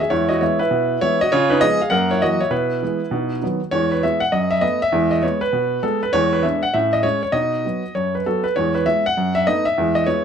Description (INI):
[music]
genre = jazz, stride piano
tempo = 199 BPM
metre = 4/4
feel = swing 64% on 8ths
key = E major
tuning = A4 = 440 Hz
[part]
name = clear upright piano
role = solo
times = 0.0-10.2 s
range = E2 to F#5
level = -17 LUFS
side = equal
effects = none
[sound]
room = moderate studio reverb, RT60 0.7 s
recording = none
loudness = -17 LUFS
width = side -7 dB against mid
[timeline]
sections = 0.0-3.7 A section; 3.7-10.2 A section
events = none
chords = 0.1 E; 1.3 C#7; 1.9 F#7; 2.5 E/B; 3.1 B; 3.7 E; 4.3 B5/F#; 4.9 E; 6.1 E7; 6.7 Amaj7; 7.3 B; 8.5 E; 9.2 B7/F#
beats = | 0.11 0.41 0.71 1.01 | 1.31 1.61 1.91 2.21 | 2.52 2.82 3.12 3.42 | 3.72 4.02 4.32 4.62 | 4.93 5.23 5.53 5.83 | 6.13 6.43 6.74 7.04 | 7.34 7.64 7.94 8.24 | 8.55 8.85 9.15 9.45 | 9.75 10.05